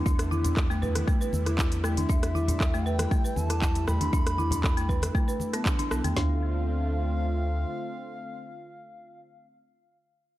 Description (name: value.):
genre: afro house.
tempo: 118 BPM.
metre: 4/4.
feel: straight.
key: D dorian.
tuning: A4 = 439 Hz.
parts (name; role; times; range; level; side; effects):
warm analog pad; sustained chords; 0.0-9.2 s; D3 to F4; -37 LUFS; equal; chorus, sidechain pumping.
folk marimba with medium hard mallets; arpeggios; 0.0-6.4 s; A3 to B4; -32 LUFS; equal; sidechain pumping, analog delay.
warm sub bass; bass; 0.1-7.7 s; B1 to E2; -28 LUFS; equal; sidechain pumping.
afro-pop drum kit; drums; 0.1-6.1 s; handclaps, hi-hat, rim click, shaker; -34 LUFS; equal; small room reverb.
deep house drum kit; drums; 0.1-6.3 s; kick drum, snare drum, toms; -26 LUFS; equal; small room reverb.
congas; percussion; 0.1-6.1 s; none; -34 LUFS; left 1 dB; none.
bright reedy bass bansuri; melody; 2.1-9.2 s; E5 to B5; -36 LUFS; equal; analog delay.
room: digital ambience.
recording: dry, gritty hardware recording, transformer saturation.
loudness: -24 LUFS.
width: side -15 dB against mid.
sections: 0.0-6.2 A section; 6.2-10.2 B section.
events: drop 0.0-6.2.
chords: 0.0 Em7; 6.2 Dm7.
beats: | 0.06 0.57 1.08 1.59 | 2.10 2.60 3.11 3.62 | 4.13 4.64 5.15 5.66 | 6.16 6.67 7.18 7.69 | 8.20 8.71.